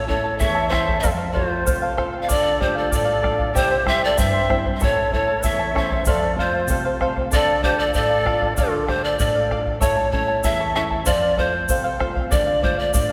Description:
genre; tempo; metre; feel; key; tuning
andean folk, Andean ensemble; 96 BPM; 2/4; straight; D minor; A4 = 440 Hz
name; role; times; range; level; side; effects
breathy reedy pan flute; melody; 0.0-13.1 s; A4 to F5; -24 LUFS; equal; none
breathy mellow large quena; second line; 0.0-9.6 s; F4 to D5; -30 LUFS; equal; tape echo
charango; accompaniment; 0.0-13.1 s; E4 to A5; -28 LUFS; equal; none
nylon-string guitar; accompaniment; 0.0-13.1 s; E2 to F4; -30 LUFS; equal; none
bombo; percussion; 0.1-13.1 s; none; -27 LUFS; equal; none
egg shaker; percussion; 0.4-13.1 s; none; -35 LUFS; equal; none
room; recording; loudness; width
wet concert hall reverb, RT60 2.2 s; heard from further back in the room; -20 LUFS; mono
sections
0.0-9.8 A section; 9.8-13.1 A section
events
none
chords
0.0 A; 1.0 F; 2.3 Dm; 3.5 C; 4.8 A; 6.1 F; 7.3 Dm; 9.8 A; 11.1 F; 12.3 Dm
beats
0.39 | 1.03 1.66 | 2.29 2.92 | 3.55 4.18 | 4.80 5.43 | 6.06 6.69 | 7.31 7.94 | 8.56 9.19 | 9.81 10.44 | 11.06 11.69 | 12.31 12.94

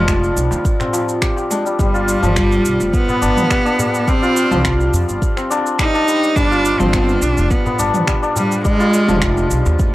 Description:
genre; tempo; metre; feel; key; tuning
organic downtempo; 105 BPM; 4/4; straight; unclear; A4 = 440 Hz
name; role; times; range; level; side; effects
clear cello; melody; 0.0-9.5 s; G3 to Eb4; -18 LUFS; right 1 dB; tape echo
santur; arpeggios; 0.0-9.9 s; F3 to G4; -18 LUFS; left 2 dB; vintage 12-bit sampler grit, tape echo
upright bass; bass; 0.0-9.9 s; F1 to F2; -18 LUFS; equal; none
electronic kick drum; drums; 0.1-9.9 s; none; -18 LUFS; equal; none
organic electronic drum kit; drums; 0.1-9.9 s; cabasa, finger snaps, toms; -23 LUFS; right 1 dB; none
darbuka; percussion; 0.2-9.8 s; none; -29 LUFS; equal; none
room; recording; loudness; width
small room reverb; dry, gritty hardware recording, transformer saturation; -13 LUFS; side -16 dB against mid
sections
0.0-9.9 A section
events
none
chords
0.0 Fm; 1.8 G7; 4.1 Cm; 6.4 G7; 8.7 Fm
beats
0.08 0.65 1.22 | 1.79 2.37 2.94 3.51 | 4.08 4.65 5.22 5.79 | 6.37 6.94 7.51 8.08 | 8.65 9.22 9.79

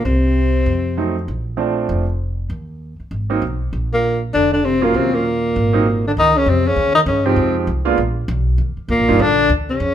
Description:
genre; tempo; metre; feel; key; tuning
jazz, small-group swing and bop; 197 BPM; 4/4; swing 60% on 8ths; Bb major; A4 = 440 Hz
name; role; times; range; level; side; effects
warm tenor saxophone; melody; 0.0-1.1, 3.9-9.9 s; Bb3 to Eb4; -16 LUFS; left 3 dB; none
trombone with bucket mute; second line; 0.0-1.1, 3.9-9.9 s; Bb2 to Eb3; -23 LUFS; right 4 dB; none
upright bass; bass; 0.0-9.9 s; F1 to G2; -20 LUFS; equal; none
bright grand piano; accompaniment; 1.0-9.2 s; F3 to G4; -19 LUFS; right 5 dB; none
room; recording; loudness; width
moderate large studio reverb, RT60 0.9 s; minimal, uncompressed stereo recording; -15 LUFS; side -10 dB against mid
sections
0.0-6.2 A section; 6.2-9.9 B section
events
none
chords
0.1 N.C.; 0.7 F7b9; 1.3 Bbmaj7; 2.5 N.C.; 3.1 Ab9; 3.7 Bb5; 4.9 Ebm7; 5.6 Ab7; 6.2 Dbmaj9; 7.4 Fm9; 8.0 N.C.; 8.6 Ebmaj7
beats
| 0.06 0.36 0.67 0.97 | 1.28 1.58 1.89 2.19 | 2.50 2.81 3.11 3.42 | 3.72 4.03 4.33 4.64 | 4.94 5.25 5.55 5.86 | 6.16 6.46 6.77 7.07 | 7.38 7.68 7.99 8.29 | 8.59 8.90 9.20 9.51 | 9.81

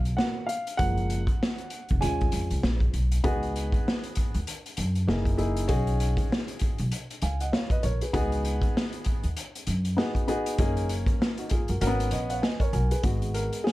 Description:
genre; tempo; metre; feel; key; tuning
hip hop, jazz-hop; 98 BPM; 4/4; swing 60% on 16ths; unclear; A4 = 439 Hz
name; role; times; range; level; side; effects
upright bass; bass; 0.0-13.5 s; E#1 to F#2; -27 LUFS; equal; none
vintage drum kit; drums; 0.1-13.7 s; hi-hat, kick drum, snare drum; -28 LUFS; equal; none
dark upright piano; accompaniment; 0.2-13.7 s; E#3 to G#5; -30 LUFS; equal; none
room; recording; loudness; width
light reverb; dark, warm production; -24 LUFS; side -17 dB against mid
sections
0.0-3.2 A section; 3.2-13.0 B section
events
upright piano solo 0.0-3.2; upright piano fill 11.8-13.0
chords
0.0 G#m9 (rootless); 0.8 F#maj9; 2.0 D#9sus4; 3.2 C#9sus4; 5.1 F#13; 5.7 B69; 8.1 C#9sus4; 10.6 F#69; 11.8 G#m11; 13.0 G#m9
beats
0.18 | 0.79 1.41 2.02 2.63 | 3.24 3.85 4.47 5.08 | 5.69 6.30 6.92 7.53 | 8.14 8.75 9.36 9.98 | 10.59 11.20 11.81 12.43 | 13.04 13.65

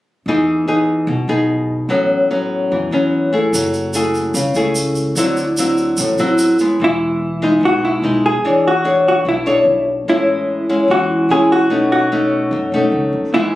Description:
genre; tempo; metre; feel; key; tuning
bossa nova; 147 BPM; 4/4; straight; E major; A4 = 442 Hz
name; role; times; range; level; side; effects
nylon-string guitar; accompaniment; 0.3-13.6 s; A2 to C#5; -15 LUFS; left 1 dB; none
upright bass; bass; 0.3-13.6 s; E1 to F#2; -27 LUFS; right 1 dB; none
egg shaker; percussion; 3.5-6.8 s; none; -24 LUFS; right 2 dB; none
vintage hollow-body jazz guitar; melody; 6.8-13.6 s; E4 to G#4; -17 LUFS; equal; plate reverb
room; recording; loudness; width
light reverb; recorded on a phone in the room, studio reverb; -13 LUFS; side -15 dB against mid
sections
0.3-6.8 A section; 6.8-13.6 B section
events
none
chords
0.3 Emaj7; 1.9 A69; 3.5 F#m9; 5.2 D9; 6.8 Emaj7; 8.4 E13; 10.1 Amaj7; 11.7 B9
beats
| 0.27 0.67 1.08 1.49 | 1.90 2.31 2.72 3.12 | 3.53 3.94 4.35 4.76 | 5.17 5.58 5.99 6.39 | 6.80 7.21 7.62 8.03 | 8.44 8.84 9.25 9.66 | 10.07 10.48 10.89 11.29 | 11.70 12.11 12.52 12.93 | 13.34

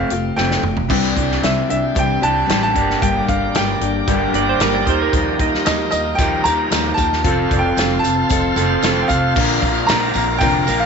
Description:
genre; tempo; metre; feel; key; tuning
folk rock and heartland rock; 114 BPM; 4/4; straight; unclear; A4 = 440 Hz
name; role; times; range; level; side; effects
bright grand piano; melody; 0.0-10.9 s; Eb5 to Bb5; -21 LUFS; right 1 dB; none
picked steel-string acoustic guitar; accompaniment; 0.0-10.9 s; G2 to Bb4; -23 LUFS; left 11 dB; none
electric guitar through a small old amp; riff; 0.0-10.9 s; G2 to Bb4; -21 LUFS; right 1 dB; none
upright bass; bass; 0.0-10.9 s; F1 to Eb2; -23 LUFS; right 1 dB; none
natural country drum kit; drums; 0.1-10.8 s; crash cymbal, hi-hat, kick drum, snare drum, toms; -22 LUFS; equal; none
mellow reed electric piano; accompaniment; 0.9-10.8 s; D4 to A5; -29 LUFS; right 11 dB; fast tremolo
overdriven tonewheel organ; sustained chords; 0.9-10.9 s; D4 to F5; -26 LUFS; right 1 dB; slow rotary speaker
clean lap steel guitar; second line; 4.4-5.7 s; Bb4 to Eb5; -22 LUFS; right 11 dB; none
tambourine; percussion; 5.1-10.8 s; none; -31 LUFS; right 14 dB; none
room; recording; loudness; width
moderate echo chamber reverb, RT60 1.4 s, studio ambience; 1960s-style stereo with parts hard left and right, nothing above 7.8 kHz; -14 LUFS; side -6 dB against mid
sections
0.9-9.4 A section; 9.4-10.9 B section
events
drum fill 0.4-0.9; reed electric piano fill 8.6-9.4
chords
0.0 Fadd9; 0.9 Cadd9; 2.8 Gm; 4.9 Ebadd9; 7.3 F; 9.4 Bb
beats
0.37 | 0.90 1.43 1.96 2.49 | 3.02 3.55 4.08 4.61 | 5.14 5.67 6.20 6.72 | 7.25 7.78 8.31 8.83 | 9.36 9.89 10.41

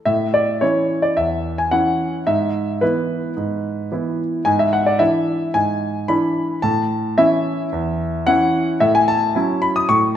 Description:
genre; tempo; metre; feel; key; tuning
classical-period piano sonatina; 110 BPM; 4/4; rubato; A major; A4 = 441 Hz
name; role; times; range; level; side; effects
clear concert grand piano; solo; 0.1-10.2 s; E2 to D#6; -16 LUFS; equal; none
room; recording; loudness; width
moderate recital hall reverb, RT60 1.5 s; none; -16 LUFS; side -10 dB against mid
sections
0.1-10.2 A section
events
none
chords
0.1 A; 2.3 E/G#; 4.5 E7/G#; 6.6 A; 8.8 F#m7/A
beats
| 0.06 0.62 1.17 1.72 | 2.27 2.82 3.37 3.91 | 4.45 5.00 5.54 6.09 | 6.63 7.18 7.72 8.27 | 8.81 9.35 9.89

